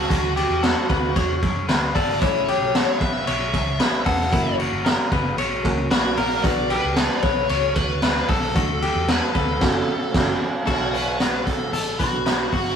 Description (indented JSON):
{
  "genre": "jangly indie pop",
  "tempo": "114 BPM",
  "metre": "4/4",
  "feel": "straight",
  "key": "B minor",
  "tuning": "A4 = 439 Hz",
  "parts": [
    { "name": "dark smooth lead guitar", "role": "melody", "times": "0.0-12.8 s", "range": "F#4 to F#5", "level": "-25 LUFS", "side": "equal", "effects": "overdrive" },
    { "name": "direct-recorded clean electric guitar", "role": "arpeggios", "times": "0.0-12.8 s", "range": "E4 to C#5", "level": "-26 LUFS", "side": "left 4 dB", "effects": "none" },
    { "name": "vintage muted picked electric bass", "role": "bass", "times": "0.0-12.8 s", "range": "E1 to F#2", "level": "-29 LUFS", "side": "equal", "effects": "none" },
    { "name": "raw garage drum kit", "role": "drums", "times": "0.1-12.7 s", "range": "crash cymbal, hi-hat, kick drum, ride cymbal, snare drum", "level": "-22 LUFS", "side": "equal", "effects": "none" },
    { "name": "dark upright piano", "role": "accompaniment", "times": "2.2-12.8 s", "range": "A3 to B4", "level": "-30 LUFS", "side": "right 2 dB", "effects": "none" }
  ],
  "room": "moderate stone room reverb, RT60 1.4 s",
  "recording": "rough rehearsal-room recording, tube saturation",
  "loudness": "-18 LUFS",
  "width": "side -7 dB against mid",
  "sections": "0.0-10.7 A section; 10.7-12.8 B section",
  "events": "band accent 9.6-10.7",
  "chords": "0.1 D; 2.2 A; 4.3 F#; 6.4 Bm; 8.6 D; 9.6 F#m7; 10.7 Bm7",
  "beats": "| 0.11 0.63 1.16 1.69 | 2.22 2.75 3.27 3.80 | 4.33 4.86 5.39 5.92 | 6.45 6.97 7.50 8.03 | 8.56 9.09 9.62 10.15 | 10.68 11.21 11.74 12.27"
}